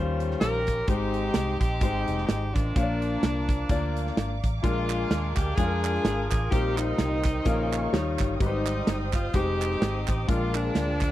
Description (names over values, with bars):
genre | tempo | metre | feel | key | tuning
uptempo gospel | 128 BPM | 4/4 | swing 56% on 8ths | unclear | A4 = 436 Hz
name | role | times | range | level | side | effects
clear grand piano | accompaniment | 0.0-11.0 s | Ab2 to D5 | -30 LUFS | left 4 dB | none
dark studio string section | sustained chords | 0.0-11.1 s | Db4 to Eb6 | -40 LUFS | right 1 dB | none
vintage muted fingered electric bass | bass | 0.0-11.1 s | F1 to F2 | -30 LUFS | equal | none
modern studio drum kit | drums | 0.2-11.1 s | hi-hat, kick drum, snare drum | -27 LUFS | right 1 dB | none
warm saxophone section | melody | 0.4-11.1 s | F3 to Bb4 | -30 LUFS | equal | none
mellow tonewheel organ | sustained chords | 4.6-11.1 s | Bb4 to Eb6 | -38 LUFS | right 3 dB | fast rotary speaker, chorus vibrato
group handclap | percussion | 4.9-11.1 s | none | -35 LUFS | right 12 dB | none
room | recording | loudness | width
little or no reverb | dry, close 1970s-style studio recording, faint mains hum | -24 LUFS | side -14 dB against mid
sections
0.0-11.1 A section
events
none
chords
0.0 Eb13; 0.9 Abmaj7; 2.8 Bb; 4.6 Bb7; 6.5 Eb6/Bb; 7.5 Bbm7; 7.9 Eb9; 8.4 Abmaj7; 10.3 Bb7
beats
0.41 | 0.88 1.35 1.82 2.29 | 2.76 3.23 3.70 4.17 | 4.64 5.11 5.58 6.05 | 6.52 6.99 7.46 7.93 | 8.40 8.87 9.35 9.82 | 10.29 10.76